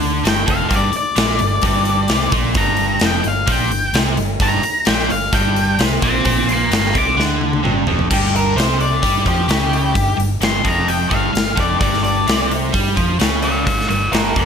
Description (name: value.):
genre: blues rock power trio and southern rock.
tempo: 130 BPM.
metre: 4/4.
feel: straight.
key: G minor.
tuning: A4 = 440 Hz.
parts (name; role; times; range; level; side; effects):
biting overdriven guitar; riff; 0.0-14.5 s; F2 to G3; -19 LUFS; equal; none.
vintage muted fingered electric bass; bass; 0.0-14.5 s; F1 to G2; -23 LUFS; equal; none.
big rock drum kit; drums; 0.0-14.5 s; crash cymbal, hi-hat, kick drum, snare drum, toms; -19 LUFS; equal; none.
octave-fuzz lead guitar; melody; 0.3-14.5 s; F4 to D6; -19 LUFS; left 2 dB; distortion.
room: light reverb, studio reverb.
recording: none.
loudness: -14 LUFS.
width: side -7 dB against mid.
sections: 0.0-8.1 A section; 8.1-14.5 B section.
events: lead electric guitar solo 0.0-8.1; drum fill 7.2-8.1.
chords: 0.0 Gm; 8.1 G5.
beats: 0.26 | 0.72 1.18 1.64 2.11 | 2.57 3.03 3.49 3.95 | 4.42 4.88 5.34 5.80 | 6.26 6.72 7.18 7.64 | 8.10 8.57 9.03 9.49 | 9.95 10.42 10.88 11.34 | 11.81 12.27 12.73 13.20 | 13.66 14.12.